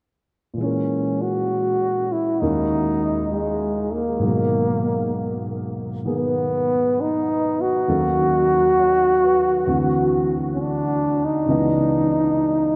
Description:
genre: jazz.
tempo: 66 BPM.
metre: 4/4.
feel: swing 68% on 8ths.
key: G# minor.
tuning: A4 = 438 Hz.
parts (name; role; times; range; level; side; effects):
dark concert grand piano; accompaniment; 0.5-12.8 s; C#2 to D#5; -26 LUFS; equal; none.
breathy trombone; melody; 0.6-12.8 s; G#3 to F#4; -22 LUFS; equal; none.
room: wet cathedral reverb, RT60 6.1 s.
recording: in a vast, echoing space.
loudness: -21 LUFS.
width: mono.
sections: 0.6-4.2 A section; 4.2-12.8 B section.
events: none.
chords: 0.6 A#m7b5; 2.4 D#7sus4; 4.2 G#m9; 7.9 D#m7b5; 9.7 D9; 11.5 C#m9.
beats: | 0.60 1.51 2.42 3.32 | 4.23 5.14 6.05 6.96 | 7.87 8.77 9.67 10.57 | 11.46 12.36.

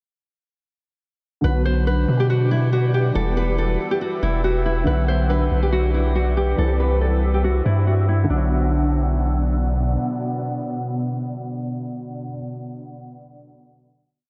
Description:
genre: hip hop, trap.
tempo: 140 BPM.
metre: 4/4.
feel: half-time.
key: B phrygian.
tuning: A4 = 441 Hz.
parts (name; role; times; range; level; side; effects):
nylon-string guitar; melody; 1.4-9.5 s; D4 to C5; -27 LUFS; equal; low-pass filter, analog delay.
dark concert grand piano; accompaniment; 1.4-14.2 s; D3 to G4; -29 LUFS; equal; ensemble chorus, low-pass filter.
ethereal airy pad; sustained chords; 2.1-12.3 s; B2 to E6; -31 LUFS; equal; ensemble chorus, built-in reverb.
long sustained 808-style bass; bass; 1.4-10.0 s; E1 to B2; -22 LUFS; equal; none.
room: moderate huge ambient reverb, RT60 7.7 s.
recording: dreamy mix soaked in reverb, low-pass filter.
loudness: -21 LUFS.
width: mono.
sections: 1.4-8.3 breakdown; 8.3-11.7 final chord.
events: none.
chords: 1.4 Bm; 3.2 Em; 4.9 Bm; 6.6 C; 8.3 Bm.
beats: | 1.44 1.87 2.30 2.73 | 3.15 3.58 4.01 4.44 | 4.87 5.30 5.73 6.16 | 6.58 7.01 7.44 7.87 | 8.30 8.73 9.15 9.58 | 10.01 10.44 10.87 11.30.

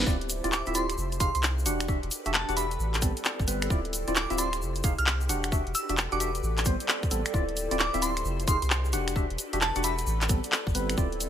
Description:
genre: UK garage, two-step garage.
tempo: 132 BPM.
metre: 4/4.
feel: swing 64% on 16ths.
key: unclear.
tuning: A4 = 440 Hz.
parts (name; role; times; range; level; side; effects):
percussive organ stab; stabs; 0.0-11.1 s; G3 to F#5; -32 LUFS; equal; wide subtle chorus, ping-pong delay.
soft dub sub bass; bass; 0.0-11.3 s; D1 to C2; -31 LUFS; equal; sidechain pumping.
warbly tape-like pad; texture; 0.0-11.3 s; G4 to E5; -39 LUFS; right 1 dB; chorus, built-in reverb, phaser, sidechain pumping.
soft string machine; sustained chords; 0.1-11.3 s; C4 to C5; -42 LUFS; equal; phaser, ensemble chorus, sidechain pumping.
electronic kick drum; drums; 0.1-11.1 s; none; -28 LUFS; equal; none.
egg shaker; percussion; 0.1-11.3 s; none; -36 LUFS; left 2 dB; none.
garage drum kit; drums; 0.2-11.3 s; finger snaps, handclaps, hi-hat; -29 LUFS; equal; none.
glassy synth bell; melody; 0.5-10.1 s; A5 to F6; -33 LUFS; right 1 dB; chorus, ping-pong delay.
room: light reverb.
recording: bright 1980s-style digital production.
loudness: -25 LUFS.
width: side -10 dB against mid.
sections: 0.0-11.3 A section.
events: none.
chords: 0.1 Dm9; 1.0 Fm9; 1.7 Em9; 2.8 Am9; 3.7 Dm9; 4.6 Fm9; 5.3 Em9; 6.4 Am9; 7.3 Dm9; 8.2 Fm9; 8.9 Em9; 10.1 Am9.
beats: | 0.07 0.52 0.98 1.43 | 1.89 2.34 2.79 3.25 | 3.70 4.16 4.61 5.07 | 5.52 5.98 6.43 6.88 | 7.34 7.79 8.25 8.70 | 9.16 9.61 10.07 10.52 | 10.98.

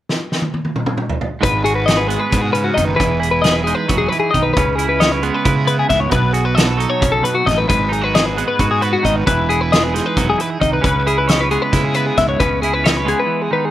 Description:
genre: math rock and midwest emo.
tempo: 268 BPM (eighths).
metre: 7/8.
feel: straight.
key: C# minor.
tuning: A4 = 440 Hz.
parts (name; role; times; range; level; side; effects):
loose indie drum kit; drums; 0.1-13.2 s; hi-hat, kick drum, snare drum, toms; -19 LUFS; equal; none.
twelve-string electric guitar; accompaniment; 1.4-13.7 s; G#2 to C#5; -20 LUFS; right 6 dB; spring reverb, slapback echo.
twelve-string electric guitar; arpeggios; 1.4-13.7 s; F#4 to E5; -17 LUFS; left 4 dB; none.
fuzz fingered electric bass; bass; 1.4-13.1 s; E1 to C#3; -21 LUFS; equal; overdrive.
room: little or no reverb.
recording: none.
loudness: -14 LUFS.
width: side -13 dB against mid.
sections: 0.0-1.4 A section; 1.4-13.7 B section.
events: drum fill 0.1-1.4; break 13.3-13.7.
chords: 0.0 N.C.; 1.4 G#m7; 3.0 Emaj7; 4.6 C#m7; 6.1 B9; 7.7 G#m7; 9.3 Emaj7; 10.8 C#m7.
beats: 0.08 0.30 0.53 0.75 0.98 1.20 | 1.43 1.65 1.88 2.10 2.32 2.55 2.77 | 3.00 3.22 3.44 3.67 3.89 4.12 4.34 | 4.56 4.79 5.01 5.23 5.46 5.68 5.91 | 6.13 6.35 6.58 6.80 7.02 7.25 7.47 | 7.70 7.92 8.14 8.37 8.59 8.81 9.04 | 9.26 9.49 9.71 9.93 10.16 10.38 10.61 | 10.83 11.05 11.28 11.50 11.73 11.95 12.18 | 12.40 12.62 12.85 13.07 13.30 13.52.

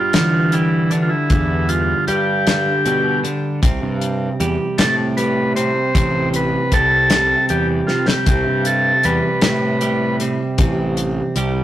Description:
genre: psychedelic rock.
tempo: 52 BPM (dotted quarters).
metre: 6/8.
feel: straight.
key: unclear.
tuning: A4 = 439 Hz.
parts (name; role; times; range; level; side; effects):
combo organ; melody; 0.0-10.2 s; D4 to C5; -18 LUFS; equal; spring reverb.
twelve-string electric guitar; riff; 0.0-11.6 s; G2 to G3; -21 LUFS; right 2 dB; none.
fuzz picked electric bass; bass; 0.1-11.6 s; A1 to E3; -21 LUFS; equal; overdrive.
damped 70s drum kit; drums; 0.1-11.5 s; hi-hat, kick drum, snare drum; -18 LUFS; left 1 dB; none.
room: moderate stone room reverb, RT60 1.0 s.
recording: rough rehearsal-room recording, tube saturation.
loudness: -15 LUFS.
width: side -12 dB against mid.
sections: 0.0-11.6 A section.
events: transistor combo organ solo 0.0-11.6; drum fill 7.9-8.3.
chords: 0.0 G5; 3.6 C5.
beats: 0.15 | 1.31 2.47 | 3.63 4.79 | 5.95 7.11 | 8.27 9.43 | 10.59.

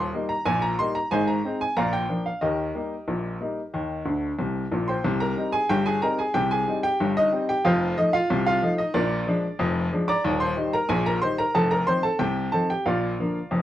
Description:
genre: ragtime piano.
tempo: 92 BPM.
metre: 2/4.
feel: straight.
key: Eb major.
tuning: A4 = 442 Hz.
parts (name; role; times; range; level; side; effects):
bright upright piano; solo; 0.0-13.6 s; Eb1 to D6; -22 LUFS; equal; none.
room: light reverb.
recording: worn, warbling old tape, cassette tape, warbly pitch drift.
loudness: -22 LUFS.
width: side -13 dB against mid.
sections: 0.0-5.0 A section; 5.0-13.6 A section.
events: upright piano fill 4.1-5.0.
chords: 0.0 Eb; 1.1 Ab; 1.8 Bb; 2.4 Eb; 5.0 Cm; 7.7 F7; 9.0 Bb7; 10.2 Eb; 11.5 F7; 12.9 Bb.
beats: 0.46 | 1.11 1.76 | 2.42 3.07 | 3.73 4.38 | 5.04 5.70 | 6.35 7.00 | 7.65 8.30 | 8.95 9.60 | 10.25 10.89 | 11.54 12.20 | 12.86 13.51.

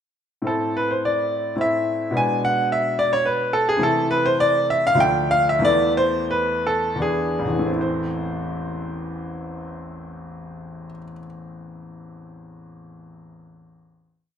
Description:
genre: classical, baroque-style suite movement for grand piano.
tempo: 73-111 BPM.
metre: 3/4.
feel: rubato.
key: A minor.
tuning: A4 = 437 Hz.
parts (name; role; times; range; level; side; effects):
clear baby grand piano; solo; 0.4-14.4 s; A1 to G#5; -20 LUFS; equal; none.
room: wet recital hall reverb, RT60 1.4 s.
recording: none.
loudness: -19 LUFS.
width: side -8 dB against mid.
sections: 0.5-7.8 A section; 7.8-12.4 final chord.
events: slowing down 3.0-7.8.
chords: 0.5 Am; 2.2 G#dim/B; 3.8 Am/C; 5.0 Dm; 5.6 Esus4; 7.0 E7; 7.8 Am.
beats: | 0.46 1.03 1.60 | 2.16 2.71 3.25 | 3.80 4.38 4.98 | 5.61 6.28 7.00 | 7.79 8.57 9.34 | 10.12 10.89 11.67.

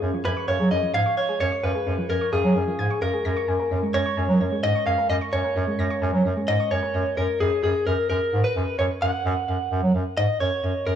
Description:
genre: synth-pop.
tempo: 130 BPM.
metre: 4/4.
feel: straight.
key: F# major.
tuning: A4 = 440 Hz.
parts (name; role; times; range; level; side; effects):
soft round pluck; arpeggios; 0.0-6.9 s; E#3 to A#6; -29 LUFS; equal; chorus, tape echo.
mellow bass clarinet; bass; 0.0-11.0 s; F#2 to F#3; -24 LUFS; right 1 dB; none.
direct-recorded clean electric guitar; melody; 0.3-11.0 s; G#4 to F#5; -24 LUFS; left 1 dB; tape echo.
room: light reverb, small room reverb.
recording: dry, gritty hardware recording, transformer saturation, cassette tape, small room ambience.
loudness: -21 LUFS.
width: side -9 dB against mid.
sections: 0.0-6.9 A section; 6.9-11.0 B section.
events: none.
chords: 0.0 C#; 3.2 A#m7/F#; 6.9 F#.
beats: 0.02 0.48 0.94 | 1.40 1.86 2.33 2.79 | 3.25 3.71 4.17 4.63 | 5.10 5.56 6.02 6.48 | 6.94 7.40 7.87 8.33 | 8.79 9.25 9.71 10.17 | 10.63.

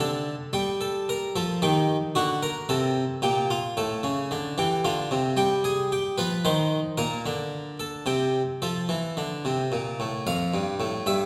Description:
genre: classical, baroque-style two-part invention for harpsichord.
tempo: 111 BPM.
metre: 3/4.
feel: straight.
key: G minor, F major from 7.0 s.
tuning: A4 = 441 Hz.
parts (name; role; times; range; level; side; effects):
harpsichord; solo; 0.0-11.3 s; F2 to F5; -26 LUFS; equal; none.
room: wet recital hall reverb, RT60 1.7 s.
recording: recorded in a church or concert hall.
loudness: -26 LUFS.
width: mono.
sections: 0.5-3.8 A section; 3.8-10.3 B section.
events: none.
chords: 0.0 D5; 0.5 Gm; 1.6 Eb; 2.2 D7; 3.2 Gm/Bb; 3.8 A7; 4.8 Dm; 5.4 G7; 6.5 Cm/Eb; 7.0 Bbmaj7; 8.1 C5; 8.6 F.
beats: | 0.54 1.08 1.62 | 2.15 2.69 3.23 | 3.77 4.31 4.85 | 5.38 5.92 6.45 | 6.99 7.53 8.07 | 8.62 9.16 9.71 | 10.26 10.80.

